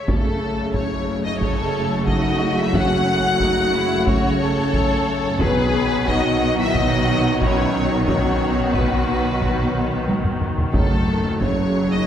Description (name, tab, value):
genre	cinematic, epic orchestral film score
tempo	90 BPM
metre	4/4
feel	straight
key	F# dorian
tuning	A4 = 442 Hz
part	clear symphonic violin section	melody	0.0-12.1 s	A4 to F#5	-25 LUFS	left 3 dB	none
part	warm symphonic violin section	second line	0.0-10.4 s	C#4 to A4	-26 LUFS	left 2 dB	none
part	rich symphonic viola section	accompaniment	0.0-12.1 s	C#3 to A3	-26 LUFS	equal	none
part	clear trombone section	sustained chords	0.1-11.0 s	B2 to A3	-28 LUFS	right 2 dB	none
part	mellow French horn section	sustained chords	0.1-12.1 s	A3 to F#4	-25 LUFS	left 1 dB	none
part	clear symphonic double bass section	bass	0.1-12.1 s	F#1 to B1	-27 LUFS	right 1 dB	none
part	warm symphonic cello section	bass	0.1-12.1 s	F#2 to B2	-27 LUFS	right 1 dB	none
part	taiko ensemble	drums	0.1-12.0 s	none	-24 LUFS	equal	none
part	timpani	percussion	10.8-11.7 s	F#2	-29 LUFS	equal	none
room	wet church reverb, RT60 3.2 s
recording	recorded in a church or concert hall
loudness	-17 LUFS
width	side -9 dB against mid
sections	0.1-12.1 A section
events	drum fill 10.1-10.7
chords	0.1 F#m; 5.4 B; 10.7 F#m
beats	| 0.08 0.75 1.41 2.08 | 2.75 3.41 4.08 4.75 | 5.41 6.08 6.75 7.41 | 8.08 8.75 9.41 10.08 | 10.75 11.41